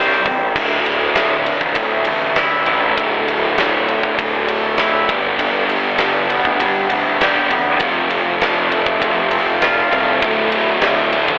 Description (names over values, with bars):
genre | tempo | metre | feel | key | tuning
quiet-loud alternative rock | 99 BPM | 4/4 | straight | unclear | A4 = 439 Hz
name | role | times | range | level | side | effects
twangy electric guitar | arpeggios | 0.0-11.4 s | D2 to C5 | -24 LUFS | equal | none
thick fuzz guitar | riff | 0.0-11.4 s | D2 to C5 | -21 LUFS | equal | distortion
fuzz picked electric bass | bass | 0.0-11.4 s | D1 to G2 | -23 LUFS | equal | overdrive
huge arena drum kit | drums | 0.1-11.4 s | crash cymbal, hi-hat, kick drum, ride cymbal, snare drum | -21 LUFS | equal | none
thick fuzz guitar | riff | 10.2-11.4 s | D2 to D3 | -24 LUFS | equal | distortion
room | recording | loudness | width
light reverb | telephone sound | -16 LUFS | mono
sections
0.6-11.4 A section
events
none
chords
0.0 C5; 0.6 Dsus2; 5.1 G; 7.8 F; 10.2 Dsus2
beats
| 0.56 1.17 1.77 2.38 | 2.98 3.58 4.19 4.79 | 5.40 6.00 6.61 7.21 | 7.81 8.42 9.02 9.63 | 10.23 10.83